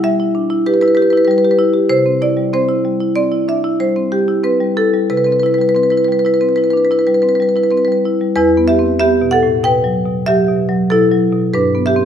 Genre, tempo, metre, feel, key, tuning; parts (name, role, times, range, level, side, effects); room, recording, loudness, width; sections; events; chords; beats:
classical, contemporary piece for solo marimba; 95 BPM; 5/4; rubato; E minor; A4 = 440 Hz
marimba with medium mallets; solo; 0.0-12.1 s; E2 to G5; -12 LUFS; equal
wet recital hall reverb, RT60 1.4 s; minimal, uncompressed stereo recording; -12 LUFS; side -8 dB against mid
0.0-8.4 A section; 8.4-12.1 B section
0.0 Em/B; 1.9 Cmaj7; 8.4 Emadd9; 11.5 G
0.05 0.67 1.29 | 1.92 2.54 3.17 3.80 4.45 | 5.10 5.76 6.43 7.08 7.73 | 8.37 9.01 9.63 10.27 10.89 | 11.53